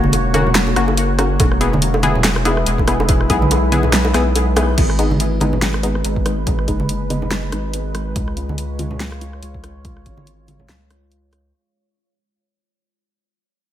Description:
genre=deep dubstep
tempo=142 BPM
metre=4/4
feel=swing 56% on 16ths, half-time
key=G# minor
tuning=A4 = 440 Hz
part: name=deep dark ambient pad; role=sustained chords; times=0.0-11.5 s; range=G#3 to C#5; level=-24 LUFS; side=equal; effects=chorus, built-in reverb
part: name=filtered dub chord stab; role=stabs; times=0.0-11.5 s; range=G#3 to G#4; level=-22 LUFS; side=left 2 dB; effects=chorus, cassette tape, dub echo
part: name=saturated sub bass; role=bass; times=0.0-11.5 s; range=E1 to C#2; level=-20 LUFS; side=equal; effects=none
part: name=congas and bongos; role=percussion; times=0.0-10.7 s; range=none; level=-23 LUFS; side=right 2 dB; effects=dub echo
part: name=deep house drum kit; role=drums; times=0.1-11.4 s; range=crash cymbal, handclaps, hi-hat, rim click, snare drum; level=-21 LUFS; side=equal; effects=small room ambience
part: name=electronic kick drum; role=drums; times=1.4-10.2 s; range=none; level=-20 LUFS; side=equal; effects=small room ambience
room=light reverb, digital ambience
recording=none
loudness=-15 LUFS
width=side -11 dB against mid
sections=0.0-4.8 A section; 4.8-11.5 B section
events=drop 0.0-4.8; band accent 4.6; fade-out 4.8-11.5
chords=0.0 F#; 1.4 E; 4.8 G#m; 8.2 C#

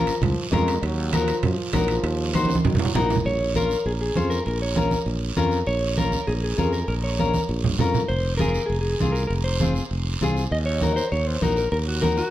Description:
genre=latin, cumbia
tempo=198 BPM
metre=4/4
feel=straight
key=Bb minor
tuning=A4 = 441 Hz
part: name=warm trombone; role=second line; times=0.0-3.3 s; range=Eb3 to Ab3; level=-30 LUFS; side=right 3 dB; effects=none
part: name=nylon-string guitar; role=accompaniment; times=0.0-12.2 s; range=C4 to C5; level=-26 LUFS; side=left 4 dB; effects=none
part: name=sustaining fretless electric bass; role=bass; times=0.0-12.2 s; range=F1 to Gb2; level=-25 LUFS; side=equal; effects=none
part: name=guiro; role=percussion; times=0.1-12.3 s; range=none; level=-35 LUFS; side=right 5 dB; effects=none
part: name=timbales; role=percussion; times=0.1-3.2 s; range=none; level=-33 LUFS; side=right 7 dB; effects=none
part: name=congas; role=percussion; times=0.2-12.2 s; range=none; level=-26 LUFS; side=right 2 dB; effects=none
part: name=mellow electric guitar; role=melody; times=3.3-12.3 s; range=Gb4 to Eb5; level=-28 LUFS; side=equal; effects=spring reverb
room=moderate large studio reverb, RT60 1.2 s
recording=dark, warm production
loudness=-20 LUFS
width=side -13 dB against mid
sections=0.0-3.2 A section; 3.2-12.3 B section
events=drum fill 2.3-3.2, 7.2-8.1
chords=0.0 Bbm; 0.8 Ebmadd9; 3.2 Bbm; 8.1 Fm; 10.5 Ebm

